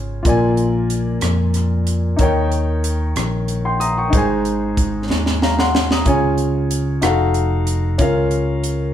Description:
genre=slow gospel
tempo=62 BPM (dotted quarters)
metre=6/8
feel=straight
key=unclear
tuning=A4 = 440 Hz
part: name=warm grand piano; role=accompaniment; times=0.0-8.9 s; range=Ab2 to Eb6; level=-19 LUFS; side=left 1 dB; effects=none
part: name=fingered electric bass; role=bass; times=0.0-8.9 s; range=F1 to F2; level=-20 LUFS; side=equal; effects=none
part: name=crisp fusion drum kit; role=drums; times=0.2-8.8 s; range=hi-hat, kick drum, rim click, snare drum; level=-20 LUFS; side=right 1 dB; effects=none
room=moderate studio reverb, RT60 0.7 s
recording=band playing live in one room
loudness=-15 LUFS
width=side -10 dB against mid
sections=0.0-8.9 A section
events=drum fill 5.1-6.1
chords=0.3 Bb7; 2.2 Eb7; 4.1 Ab; 6.1 Db; 7.0 F7b9; 8.0 Bbm/Db

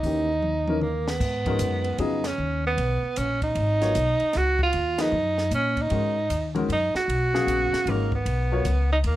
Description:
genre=modal jazz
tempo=153 BPM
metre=3/4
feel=swing 65% on 8ths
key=G# dorian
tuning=A4 = 441 Hz
part: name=warm tenor saxophone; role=melody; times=0.0-9.2 s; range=Bb3 to F#4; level=-25 LUFS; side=right 2 dB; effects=plate reverb
part: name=upright bass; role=bass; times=0.0-9.2 s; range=G#1 to A#2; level=-26 LUFS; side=left 1 dB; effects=none
part: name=compact cocktail drum kit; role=drums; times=0.0-9.2 s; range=crash cymbal, hi-hat, kick drum, ride cymbal, snare drum, toms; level=-35 LUFS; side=right 1 dB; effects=none
part: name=warm baby grand piano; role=accompaniment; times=0.1-8.6 s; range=C#3 to E#5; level=-28 LUFS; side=left 3 dB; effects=none
room=moderate small room reverb, RT60 0.5 s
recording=none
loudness=-22 LUFS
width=side -14 dB against mid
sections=0.0-1.2 A section; 1.2-9.2 B section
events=drum fill 0.4-1.2; band accent 2.2, 4.9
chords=0.0 Eb7b9; 1.2 G#m9

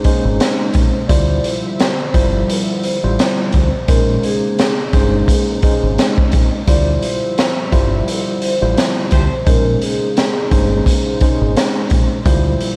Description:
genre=hip hop, boom-bap hip-hop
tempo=86 BPM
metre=4/4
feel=swing 57% on 16ths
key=unclear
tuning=A4 = 438 Hz
part: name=vibraphone with soft mallets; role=melody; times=0.0-11.7 s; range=Ab4 to D5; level=-25 LUFS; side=equal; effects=high-pass filter, low-pass filter
part: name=tine electric piano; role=accompaniment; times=0.0-12.8 s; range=G3 to C5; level=-22 LUFS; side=equal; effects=cassette tape, high-pass filter, low-pass filter
part: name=hollow soft pad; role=sustained chords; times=0.0-12.8 s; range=Db3 to E5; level=-28 LUFS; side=equal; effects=chorus, high-pass filter, low-pass filter
part: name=raw garage drum kit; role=drums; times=0.0-12.8 s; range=hi-hat, kick drum, snare drum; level=-18 LUFS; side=equal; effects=none
part: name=deep dub fingered electric bass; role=bass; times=0.2-12.5 s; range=G1 to D2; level=-20 LUFS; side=equal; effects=none
part: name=mellow horn section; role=stabs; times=9.1-9.3 s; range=A3 to C5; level=-28 LUFS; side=equal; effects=high-pass filter, low-pass filter
room=little or no reverb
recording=dry, gritty hardware recording, vinyl crackle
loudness=-15 LUFS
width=mono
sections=0.0-12.8 A section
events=none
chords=0.0 Bbm11; 1.1 Dm11; 3.9 Bbm11; 6.7 Dm11; 9.5 Bbm11; 12.3 Dm11

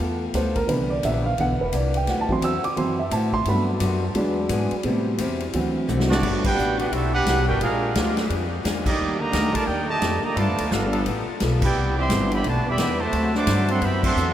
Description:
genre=jazz, big band swing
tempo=174 BPM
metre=4/4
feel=swing 62% on 8ths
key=G major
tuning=A4 = 439 Hz
part: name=dark grand piano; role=accompaniment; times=0.0-6.2 s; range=C3 to E6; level=-25 LUFS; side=right 2 dB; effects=none
part: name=picked old ladder-braced acoustic guitar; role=accompaniment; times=0.0-14.3 s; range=G2 to A4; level=-31 LUFS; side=left 4 dB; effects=none
part: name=upright bass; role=bass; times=0.0-14.3 s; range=E1 to A2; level=-25 LUFS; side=equal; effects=none
part: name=swinging big-band drum kit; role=drums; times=0.3-14.3 s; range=crash cymbal, hi-hat, kick drum, ride cymbal, snare drum, toms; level=-29 LUFS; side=equal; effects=none
part: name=warm trumpet section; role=melody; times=6.1-14.3 s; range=Bb3 to D6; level=-25 LUFS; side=right 2 dB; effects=none
part: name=bright trombone section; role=second line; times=6.1-14.3 s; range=Bb2 to G4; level=-27 LUFS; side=right 2 dB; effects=none
part: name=warm saxophone section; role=sustained chords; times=7.5-14.3 s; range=F#3 to C5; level=-36 LUFS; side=left 1 dB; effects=none
room=wet huge ambient reverb, RT60 7.7 s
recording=in a vast, echoing space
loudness=-20 LUFS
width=side -11 dB against mid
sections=0.0-6.2 A section; 6.2-14.3 B section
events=grand piano solo 0.0-6.2; drum fill 5.9-6.2; band accent 6.4, 8.8, 11.6, 14.0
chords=0.0 G9; 0.7 Cmaj9; 2.1 D9; 3.5 Gmaj7; 4.2 E7; 4.8 Am7; 5.5 D7; 6.2 Gmaj7; 7.6 Bb7; 9.0 Ebmaj7; 10.4 G9; 11.7 Cmaj9; 13.1 D9

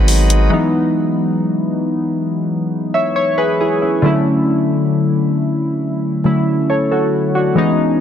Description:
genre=contemporary R&B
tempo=68 BPM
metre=4/4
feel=straight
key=unclear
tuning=A4 = 440 Hz
part: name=warm analog keys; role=accompaniment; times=0.0-8.0 s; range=D3 to E5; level=-14 LUFS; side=left 1 dB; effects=chorus
part: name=pipe organ, cornet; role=sustained chords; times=0.0-0.5 s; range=G#3 to B4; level=-22 LUFS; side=left 2 dB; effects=none
part: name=long sustained 808-style bass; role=bass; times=0.0-0.5 s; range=G#1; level=-13 LUFS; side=equal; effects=none
part: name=electronic hi-hat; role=drums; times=0.1-0.5 s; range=none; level=-20 LUFS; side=equal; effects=none
room=light reverb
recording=dense, heavily limited modern master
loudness=-14 LUFS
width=side -9 dB against mid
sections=0.5-8.0 A section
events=none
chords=0.0 G#m7; 0.5 Emaj9; 4.0 Dmaj7

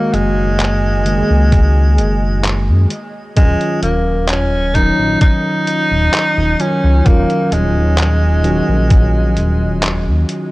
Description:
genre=vaporwave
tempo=65 BPM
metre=4/4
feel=straight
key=unclear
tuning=A4 = 440 Hz
part: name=warm tenor saxophone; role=melody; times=0.0-10.3 s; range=G#3 to D#4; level=-18 LUFS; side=equal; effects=tape echo
part: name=mellow tine electric piano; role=accompaniment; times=0.0-10.5 s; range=D#3 to G#4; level=-18 LUFS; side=equal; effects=analog chorus, vintage 12-bit sampler grit
part: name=chorused synth bass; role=bass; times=0.1-10.2 s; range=D#1 to F#2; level=-14 LUFS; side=equal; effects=transformer saturation
part: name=detuned 8-bit digital drum machine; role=drums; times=0.1-10.5 s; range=handclaps, hi-hat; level=-20 LUFS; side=equal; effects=none
part: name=electronic kick drum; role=drums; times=1.5-9.1 s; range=none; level=-11 LUFS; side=equal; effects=none
room=digital ambience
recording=dry, gritty hardware recording, cassette tape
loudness=-12 LUFS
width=side -20 dB against mid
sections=0.0-10.5 A section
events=none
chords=0.0 F#69; 2.9 D#m9

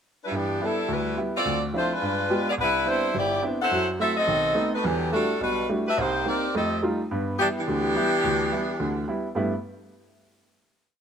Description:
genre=jazz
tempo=212 BPM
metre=4/4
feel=swing 61% on 8ths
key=G major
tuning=A4 = 439 Hz
part: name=clear saxophone section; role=melody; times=0.2-9.1 s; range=D3 to F#5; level=-24 LUFS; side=left 1 dB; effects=none
part: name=clear baby grand piano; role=accompaniment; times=0.3-9.5 s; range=G1 to G4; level=-27 LUFS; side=right 1 dB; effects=none
room=moderate echo chamber reverb, RT60 1.7 s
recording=close, detailed microphones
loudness=-22 LUFS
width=side -7 dB against mid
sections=0.0-0.3 pickup bar; 0.3-9.4 A section; 9.4-10.5 final chord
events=none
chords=0.3 G6; 1.4 Dm9; 2.0 G7b9; 2.6 Cmaj9; 3.7 F#m7b5; 4.3 B7b9; 4.8 Em11; 6.0 Cm7; 6.5 F9; 7.1 G6

